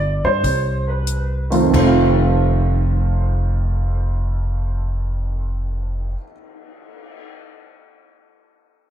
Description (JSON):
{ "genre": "jazz piano trio", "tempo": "free time", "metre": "none", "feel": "none", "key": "F mixolydian", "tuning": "A4 = 441 Hz", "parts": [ { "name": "warm grand piano", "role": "melody", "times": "0.0-6.3 s", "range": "F2 to D5", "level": "-20 LUFS", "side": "right 2 dB", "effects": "lush chorus, diffuse ambient delay" }, { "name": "upright bass", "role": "bass", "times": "0.0-6.1 s", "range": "F1 to G2", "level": "-19 LUFS", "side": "equal", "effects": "none" }, { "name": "compact cocktail drum kit", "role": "drums", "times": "0.4-7.2 s", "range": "crash cymbal, cymbal swell, hi-hat, kick drum", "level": "-30 LUFS", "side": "left 1 dB", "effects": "none" } ], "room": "light reverb, small room ambience", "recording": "none", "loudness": "-16 LUFS", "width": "side -10 dB against mid", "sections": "0.0-1.7 A section; 1.7-7.3 B section", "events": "slowing down 0.0-1.7", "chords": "0.4 Csus4; 1.7 F7" }